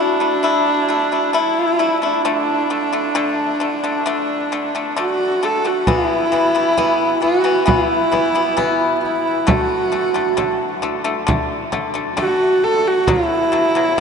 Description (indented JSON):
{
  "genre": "mongolian traditional, Mongolian folk",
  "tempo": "66 BPM",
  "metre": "4/4",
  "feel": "straight",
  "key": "D gong mode",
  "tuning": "A4 = 440 Hz",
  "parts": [
    { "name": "clear horsehead fiddle", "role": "melody", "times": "0.0-14.0 s", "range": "D4 to A4", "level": "-17 LUFS", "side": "right 1 dB", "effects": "none" },
    { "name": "pipa", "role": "arpeggios", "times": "0.0-14.0 s", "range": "B2 to E4", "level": "-20 LUFS", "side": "left 4 dB", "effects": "none" },
    { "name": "frame drum", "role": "percussion", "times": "5.9-14.0 s", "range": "none", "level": "-24 LUFS", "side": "right 2 dB", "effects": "none" }
  ],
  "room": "wet huge ambient reverb, RT60 8.0 s",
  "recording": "in a vast, echoing space, nothing above 10.9 kHz",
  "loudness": "-15 LUFS",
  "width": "side -6 dB against mid",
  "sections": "0.0-5.9 A section; 5.9-14.0 B section",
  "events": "none",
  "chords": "0.0 A5; 2.3 D5; 5.9 E5; 9.5 D5; 13.1 B5",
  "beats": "0.44 1.35 | 2.25 3.16 4.07 4.97 | 5.88 6.78 7.69 8.59 | 9.49 10.39 11.29 12.19 | 13.08 13.98"
}